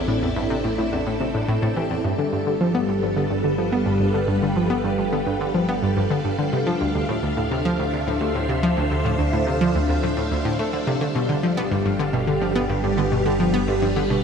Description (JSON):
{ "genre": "ambient, sequencer-driven space music", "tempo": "107 BPM", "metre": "4/4", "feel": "straight", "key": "unclear", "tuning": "A4 = 440 Hz", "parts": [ { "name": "string machine, full ensemble", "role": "sustained chords", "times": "0.0-14.2 s", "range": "G3 to F5", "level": "-24 LUFS", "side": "equal", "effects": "phaser, ensemble chorus, shimmer reverb" }, { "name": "mellow electric guitar", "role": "arpeggios", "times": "0.0-14.2 s", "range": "D3 to D5", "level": "-34 LUFS", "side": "left 2 dB", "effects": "none" }, { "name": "analog pluck", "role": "riff", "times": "0.0-14.2 s", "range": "D2 to B3", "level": "-22 LUFS", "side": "equal", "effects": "chorus, ping-pong delay" }, { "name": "analog drone", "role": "bass", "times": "0.0-14.2 s", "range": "G1 to D2", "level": "-30 LUFS", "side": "equal", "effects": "chorus" }, { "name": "twinkling granular texture", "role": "texture", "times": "0.0-2.1 s", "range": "D4 to D5", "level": "-40 LUFS", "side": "equal", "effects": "none" } ], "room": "wet huge ambient reverb, RT60 8.0 s", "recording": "none", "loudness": "-20 LUFS", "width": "side -6 dB against mid", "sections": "0.0-2.0 A section; 2.0-14.2 B section", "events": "none", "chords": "0.0 Am; 2.0 G7; 6.5 Dm7; 11.0 G7" }